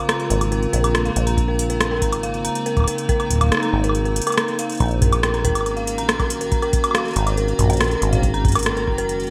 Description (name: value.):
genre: IDM.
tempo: 140 BPM.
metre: 4/4.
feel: straight.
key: Bb minor.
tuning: A4 = 440 Hz.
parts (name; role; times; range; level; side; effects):
icy glass pad; sustained chords; 0.0-9.3 s; Db3 to Gb4; -29 LUFS; equal; chorus, built-in reverb.
dark detuned synth bell; arpeggios; 0.0-9.3 s; Bb4 to Bb5; -27 LUFS; equal; chorus, digital delay.
booming analog drum machine; drums; 0.1-9.3 s; hi-hat, rim click, toms, woodblock; -25 LUFS; equal; overdrive, gated reverb, digital delay.
deep acid bass; bass; 0.3-9.3 s; Gb1 to Bb1; -24 LUFS; equal; none.
electronic kick drum; drums; 1.4-9.0 s; none; -23 LUFS; equal; overdrive.
room: moderate lush hall reverb, RT60 1.9 s.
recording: bright 1980s-style digital production.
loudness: -20 LUFS.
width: mono.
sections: 0.0-9.3 A section.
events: none.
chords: 0.0 Bbm9; 4.8 Ebm7; 8.2 Ab7sus4.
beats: 0.09 0.52 0.95 | 1.37 1.80 2.23 2.66 | 3.09 3.52 3.95 4.37 | 4.80 5.23 5.66 6.09 | 6.52 6.95 7.37 7.80 | 8.23 8.66 9.09.